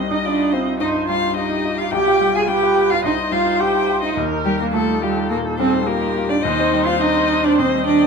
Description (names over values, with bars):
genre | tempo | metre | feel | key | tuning
quick classical-period movement for piano quartet | 106 BPM | 4/4 | rubato | unclear | A4 = 440 Hz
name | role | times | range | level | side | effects
muted violin | melody | 0.0-8.1 s | G4 to Ab5 | -23 LUFS | left 9 dB | none
clear concert grand piano | accompaniment | 0.0-8.1 s | B1 to G4 | -22 LUFS | left 4 dB | none
muted viola | accompaniment | 0.0-8.1 s | G4 to Eb5 | -26 LUFS | right 1 dB | none
muted cello | second line | 0.1-8.1 s | G3 to Ab4 | -19 LUFS | right 4 dB | none
room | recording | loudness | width
moderate stone room reverb, RT60 1.4 s | minimal, uncompressed stereo recording | -16 LUFS | side -5 dB against mid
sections
0.0-8.1 A section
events
none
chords
0.0 Cm; 1.9 G7/B; 3.0 Cm; 4.2 Eb; 6.4 Cm/Eb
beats
0.25 0.81 1.37 | 1.93 2.49 3.04 3.61 | 4.17 4.74 5.30 5.87 | 6.43 7.01 7.59